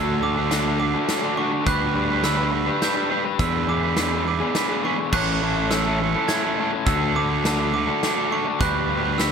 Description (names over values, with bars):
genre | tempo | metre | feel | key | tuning
post-rock | 104 BPM | 3/4 | straight | unclear | A4 = 440 Hz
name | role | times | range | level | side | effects
glockenspiel with hard plastic mallets | arpeggios | 0.0-9.3 s | C#6 to G#6 | -27 LUFS | right 6 dB | analog delay
overdriven electric guitar | riff | 0.0-9.3 s | A2 to B4 | -25 LUFS | left 10 dB | none
overdriven electric guitar | riff | 0.0-9.3 s | A2 to B4 | -25 LUFS | right 11 dB | none
fuzz fingered electric bass | bass | 0.0-9.3 s | A1 to E2 | -26 LUFS | equal | overdrive
big rock drum kit | drums | 0.5-9.3 s | crash cymbal, hi-hat, kick drum, snare drum | -28 LUFS | equal | none
room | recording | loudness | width
light reverb, small room reverb | none | -19 LUFS | side -6 dB against mid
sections
0.0-9.3 A section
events
none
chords
0.0 Dmaj7; 1.7 G6/D; 3.4 E5; 5.1 Amaj7; 6.9 Dmaj7; 8.6 G6/D